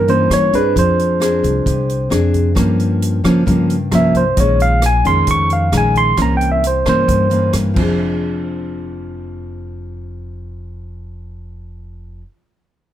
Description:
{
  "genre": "bossa nova",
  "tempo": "133 BPM",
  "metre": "4/4",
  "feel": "straight",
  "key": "F harmonic minor",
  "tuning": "A4 = 441 Hz",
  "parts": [
    { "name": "barky tine electric piano", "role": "melody", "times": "0.0-7.5 s", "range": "B4 to Db6", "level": "-16 LUFS", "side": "right 1 dB", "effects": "none" },
    { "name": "nylon-string guitar", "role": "accompaniment", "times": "0.0-12.3 s", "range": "F2 to Ab4", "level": "-17 LUFS", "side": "left 1 dB", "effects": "none" },
    { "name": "upright bass", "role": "bass", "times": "0.0-12.2 s", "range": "F1 to Db3", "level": "-20 LUFS", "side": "equal", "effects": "none" },
    { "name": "swinging big-band drum kit", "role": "drums", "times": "0.1-7.9 s", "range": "crash cymbal, hi-hat, kick drum, rim click", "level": "-23 LUFS", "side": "right 1 dB", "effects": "none" }
  ],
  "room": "light reverb",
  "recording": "none",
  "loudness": "-12 LUFS",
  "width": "side -11 dB against mid",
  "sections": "0.0-8.0 A section; 8.0-11.6 B section",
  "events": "tine electric piano solo 0.0-8.0",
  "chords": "0.0 C7b9; 0.8 Fm6; 2.6 Gm7b5; 4.4 Bbm7; 6.2 C7b9; 7.8 Fm6"
}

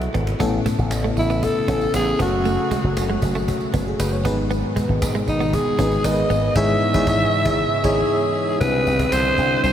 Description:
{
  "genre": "1980s-style pop",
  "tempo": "117 BPM",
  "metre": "4/4",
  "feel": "straight",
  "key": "unclear",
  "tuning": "A4 = 438 Hz",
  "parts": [
    { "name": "FM electric piano", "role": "accompaniment", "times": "0.0-9.7 s", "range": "G#2 to C#5", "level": "-23 LUFS", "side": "left 1 dB", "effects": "chorus" },
    { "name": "slap bass with an envelope filter", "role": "bass", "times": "0.0-9.7 s", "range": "F#1 to C2", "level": "-23 LUFS", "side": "equal", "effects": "none" },
    { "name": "cajon", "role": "drums", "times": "0.0-9.7 s", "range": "none", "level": "-30 LUFS", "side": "equal", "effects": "none" },
    { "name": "direct-recorded clean electric guitar", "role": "riff", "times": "0.1-6.4 s", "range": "G#3 to C#4", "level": "-30 LUFS", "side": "right 4 dB", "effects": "wide subtle chorus, diffuse ambient delay" },
    { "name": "chorused pulse-width pad", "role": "sustained chords", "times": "0.4-9.7 s", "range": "B2 to F#4", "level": "-28 LUFS", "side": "right 1 dB", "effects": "none" },
    { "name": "tambourine", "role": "percussion", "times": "0.4-9.7 s", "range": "none", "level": "-40 LUFS", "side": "right 5 dB", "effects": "none" },
    { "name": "breathy alto saxophone", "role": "melody", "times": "1.2-9.7 s", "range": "D#4 to E5", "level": "-22 LUFS", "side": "equal", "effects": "diffuse ambient delay" }
  ],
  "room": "moderate huge ambient reverb, RT60 7.4 s",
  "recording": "dreamy mix soaked in reverb",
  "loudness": "-17 LUFS",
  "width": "side -10 dB against mid",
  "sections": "0.4-8.6 A section; 8.6-9.7 B section",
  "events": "drum fill 0.0-0.4; band accent 6.6-8.6",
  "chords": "0.4 Aadd9; 2.2 F#m; 4.3 G#m; 6.6 C#madd9/G#; 8.6 Cadd9"
}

